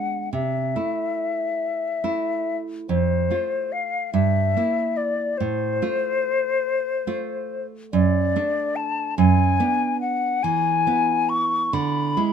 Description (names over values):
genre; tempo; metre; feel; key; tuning
romantic duo for flute and classical guitar; 47 BPM (dotted quarters); 6/8; rubato; unclear; A4 = 440 Hz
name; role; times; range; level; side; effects
hollow concert flute; melody; 0.0-12.3 s; C5 to C#6; -23 LUFS; left 5 dB; none
nylon-string guitar; accompaniment; 0.0-12.3 s; F2 to F4; -23 LUFS; right 5 dB; none
room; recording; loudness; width
light reverb; minimal, uncompressed stereo recording; -20 LUFS; side -7 dB against mid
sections
0.0-12.3 A section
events
none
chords
0.3 Am/C; 2.9 F; 4.1 Edim/G; 5.4 F/A; 7.9 D/F#; 9.2 Bm/F#; 10.4 E; 11.7 E7/D